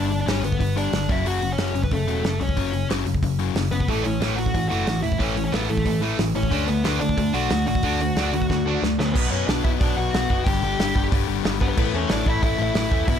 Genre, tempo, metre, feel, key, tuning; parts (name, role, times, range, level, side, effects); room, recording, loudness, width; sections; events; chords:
punk rock; 183 BPM; 4/4; straight; A4 = 438 Hz
dark smooth lead guitar; melody; 0.0-13.2 s; A3 to G5; -27 LUFS; right 1 dB; overdrive, tape echo
biting overdriven guitar; riff; 0.0-13.2 s; E2 to D4; -26 LUFS; left 13 dB
overdriven picked electric bass; bass; 0.0-13.2 s; E1 to F#2; -27 LUFS; right 1 dB
loose indie drum kit; drums; 0.1-13.2 s; crash cymbal, hi-hat, kick drum, snare drum; -25 LUFS; right 1 dB
distorted electric guitar; riff; 3.9-9.1 s; A2 to D4; -27 LUFS; right 14 dB; overdrive
light reverb; -20 LUFS; side -8 dB against mid
0.0-9.2 A section; 9.2-13.2 B section
drum fill 8.5-9.2
0.0 G; 1.1 F#m; 6.5 D; 9.2 Bm; 10.5 G; 11.8 A